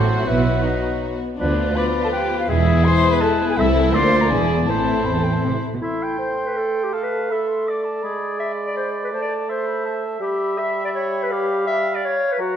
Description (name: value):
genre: quick classical-period movement for symphony orchestra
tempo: 164 BPM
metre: 3/4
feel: straight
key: A minor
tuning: A4 = 440 Hz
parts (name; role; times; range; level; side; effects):
- rich chamber violin section; melody; 0.0-5.6 s; E4 to F#4; -29 LUFS; left 6 dB; none
- clear oboe; second line; 0.0-12.6 s; G#4 to G5; -28 LUFS; right 1 dB; none
- dark chamber violin section; second line; 0.0-5.6 s; G#3 to D4; -27 LUFS; left 6 dB; none
- warm clarinet; second line; 0.0-12.6 s; E4 to E5; -25 LUFS; left 1 dB; none
- mellow bassoon; accompaniment; 0.0-12.6 s; E3 to A3; -27 LUFS; right 2 dB; none
- warm chamber viola section; accompaniment; 0.0-5.4 s; D4 to C5; -26 LUFS; left 1 dB; none
- mellow French horn section; sustained chords; 0.0-5.6 s; G#3 to F#4; -28 LUFS; left 5 dB; none
- rich chamber double bass section; bass; 0.0-5.6 s; E1 to D2; -24 LUFS; right 2 dB; none
- rich symphonic cello section; bass; 0.0-5.8 s; C2 to C3; -23 LUFS; right 2 dB; none
- concert flute; second line; 0.2-12.6 s; D5 to D6; -27 LUFS; left 2 dB; none
room: moderate scoring stage reverb, RT60 1.7 s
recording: none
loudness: -18 LUFS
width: side -9 dB against mid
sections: 0.0-5.8 A section; 5.8-12.6 B section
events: none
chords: 0.3 B; 1.4 Bdim/D; 2.5 E; 3.6 Am/C; 3.9 Bb/D; 4.3 E7; 4.7 Am; 8.0 G#dim; 9.1 Am; 10.2 Em/G